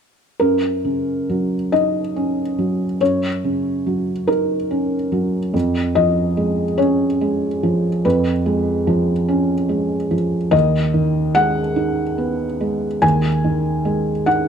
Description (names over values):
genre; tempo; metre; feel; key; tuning
neoclassical minimalist piano; 48 BPM (dotted quarters); 6/8; rubato; F# major; A4 = 440 Hz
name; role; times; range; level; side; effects
felt-muted upright piano; solo; 0.4-14.5 s; D#2 to G#5; -16 LUFS; equal; none
room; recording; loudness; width
light reverb; close, detailed microphones; -16 LUFS; side -7 dB against mid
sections
0.4-14.5 A section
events
none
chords
0.4 F#6; 5.5 C#7/E#; 10.5 G#m7/D#